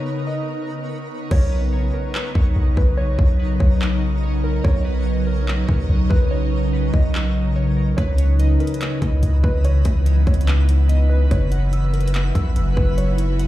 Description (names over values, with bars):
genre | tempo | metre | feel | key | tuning
hip hop, atmospheric cloud-rap | 144 BPM | 4/4 | half-time | unclear | A4 = 440 Hz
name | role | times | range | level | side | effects
warbly dusty pluck | melody | 0.0-13.5 s | A#4 to D#5 | -31 LUFS | equal | chorus, low-pass filter, tape echo
ethereal airy pad | sustained chords | 0.0-13.5 s | C#3 to A#4 | -25 LUFS | equal | ensemble chorus, built-in reverb, phaser, sidechain pumping
twinkling granular texture | texture | 0.0-13.5 s | E3 to C#5 | -35 LUFS | equal | built-in reverb
glassy digital keys | arpeggios | 1.3-13.5 s | A#4 to E6 | -34 LUFS | left 2 dB | chorus, low-pass filter, tape echo
long sustained 808-style bass | bass | 1.3-13.5 s | F#1 to D#2 | -18 LUFS | equal | none
trap drum kit | drums | 1.3-13.5 s | crash cymbal, handclaps, hi-hat, kick drum | -20 LUFS | equal | overdrive
room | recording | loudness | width
digital ambience | played on a big sound system in a bare room, large studio reverb | -16 LUFS | side -15 dB against mid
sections
0.0-1.3 A section; 1.3-13.5 B section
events
hi-hats muted 1.3-8.0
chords
0.0 Bmaj9; 8.0 C#m9; 11.3 F#7sus4